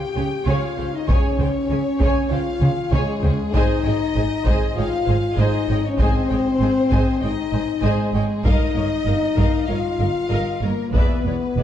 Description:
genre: cinematic, epic orchestral film score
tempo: 98 BPM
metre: 4/4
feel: straight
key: Ab major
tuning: A4 = 440 Hz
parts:
  - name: rich studio violin section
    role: melody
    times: 0.0-11.6 s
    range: Ab4 to G5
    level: -31 LUFS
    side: left 6 dB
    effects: none
  - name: warm French horn section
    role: sustained chords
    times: 0.0-11.6 s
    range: Ab3 to G4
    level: -22 LUFS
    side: left 4 dB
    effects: none
  - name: warm symphonic violin section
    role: second line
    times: 0.2-11.6 s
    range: C5 to Ab5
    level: -32 LUFS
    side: left 2 dB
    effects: none
  - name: warm symphonic viola section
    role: accompaniment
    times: 0.2-11.6 s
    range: Db4 to Eb5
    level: -30 LUFS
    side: right 3 dB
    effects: none
  - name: dark symphonic cello section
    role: bass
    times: 0.2-11.6 s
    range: E2 to Db3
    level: -27 LUFS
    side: right 2 dB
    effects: none
  - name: warm symphonic double bass section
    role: bass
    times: 0.2-11.6 s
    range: E1 to Db2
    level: -25 LUFS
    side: right 2 dB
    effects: none
  - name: solo taiko drums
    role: drums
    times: 1.1-11.5 s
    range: none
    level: -22 LUFS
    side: equal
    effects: none
room: moderate scoring stage reverb, RT60 2.1 s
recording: dark, warm production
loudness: -18 LUFS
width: side -10 dB against mid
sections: 0.0-11.6 A section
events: drum fill 2.6-3.5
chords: 0.0 Db; 3.5 Ab; 8.5 Ebadd9/G; 10.9 E7

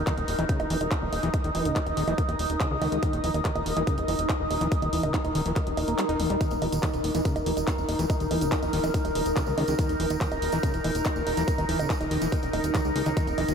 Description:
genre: psychedelic trance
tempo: 142 BPM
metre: 4/4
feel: straight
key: unclear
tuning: A4 = 440 Hz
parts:
  - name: overtone-sweeping drone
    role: sustained chords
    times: 0.0-13.5 s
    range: Eb4 to Eb5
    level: -31 LUFS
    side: right 1 dB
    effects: chorus, built-in reverb, sidechain pumping
  - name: overdriven acid bass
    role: riff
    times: 0.0-13.5 s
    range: Db3 to Eb4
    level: -32 LUFS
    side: left 1 dB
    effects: distortion, auto-pan, cassette tape, sidechain pumping, tape echo
  - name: plucky analog bass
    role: bass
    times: 0.0-13.5 s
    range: Eb1 to Db2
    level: -31 LUFS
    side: equal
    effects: none
  - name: granular cloud pad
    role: texture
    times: 0.0-13.5 s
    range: Eb4 to Eb6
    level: -31 LUFS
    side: equal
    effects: built-in reverb, sidechain pumping
  - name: big-room dance drum kit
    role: drums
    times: 0.1-13.5 s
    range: bongos, handclaps, hi-hat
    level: -33 LUFS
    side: right 2 dB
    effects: studio reverb
  - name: electronic kick drum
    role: drums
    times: 0.1-13.3 s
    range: none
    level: -28 LUFS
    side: equal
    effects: studio reverb
  - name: tambourine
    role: percussion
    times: 6.4-13.5 s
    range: none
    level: -44 LUFS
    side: right 4 dB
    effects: none
room: moderate huge ambient reverb, RT60 4.0 s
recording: dreamy mix soaked in reverb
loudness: -24 LUFS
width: side -6 dB against mid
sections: 0.0-13.5 A section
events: filter sweep on acid bass 0.0-13.5; kick drops out 6.0-6.4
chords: 0.0 Eb5

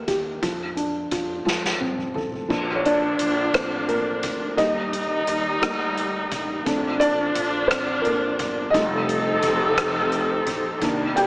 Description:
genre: six-eight pop ballad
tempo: 58 BPM (dotted quarters)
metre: 6/8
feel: straight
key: Bb major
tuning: A4 = 440 Hz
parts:
  - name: felt-muted upright piano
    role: accompaniment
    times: 0.0-11.3 s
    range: Eb3 to G5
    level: -24 LUFS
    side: equal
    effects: none
  - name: upright bass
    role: bass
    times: 0.0-11.3 s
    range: F1 to F2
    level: -34 LUFS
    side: equal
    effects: none
  - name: soft-mallet drum kit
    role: drums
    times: 0.1-11.3 s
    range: crash cymbal, hi-hat, kick drum, rim click, snare drum, toms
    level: -28 LUFS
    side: equal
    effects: none
  - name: warm studio string section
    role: sustained chords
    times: 2.5-11.3 s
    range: C3 to A4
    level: -24 LUFS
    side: equal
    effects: none
room: moderate studio reverb, RT60 0.5 s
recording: small speaker sound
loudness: -20 LUFS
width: side -27 dB against mid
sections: 0.0-2.5 A section; 2.5-11.3 B section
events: drum fill 1.5-2.5; felt piano solo 2.5-11.3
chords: 0.4 Dm/F; 1.5 F; 2.5 Bb; 4.6 Eb; 6.7 Bbmaj7; 8.7 F7

